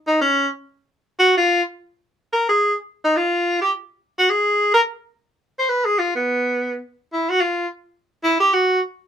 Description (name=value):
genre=jazz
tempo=free time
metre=none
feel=none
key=unclear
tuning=A4 = 440 Hz
part: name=clear tenor saxophone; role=solo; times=0.1-8.8 s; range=Cb4 to C5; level=-16 LUFS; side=equal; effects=none
room=light reverb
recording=close, detailed microphones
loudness=-17 LUFS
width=side -8 dB against mid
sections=0.0-2.3 A section; 2.3-9.1 A section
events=tenor saxophone solo 0.0-9.1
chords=none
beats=free time